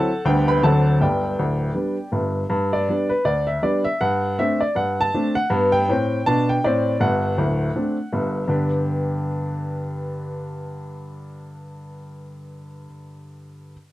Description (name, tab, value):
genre	jazz, stride piano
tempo	160 BPM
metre	4/4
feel	swing 58% on 8ths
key	G major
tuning	A4 = 440 Hz
part	clear upright piano	solo	0.0-13.7 s	D1 to B5	-20 LUFS	equal	none
room	light reverb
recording	dry, close 1970s-style studio recording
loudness	-19 LUFS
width	side -16 dB against mid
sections	0.0-2.5 A section; 2.5-8.5 B section; 8.5-11.5 C section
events	none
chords	0.3 G/D; 0.6 D7; 1.0 G; 4.0 D7/G; 5.5 G; 7.0 D7; 8.5 G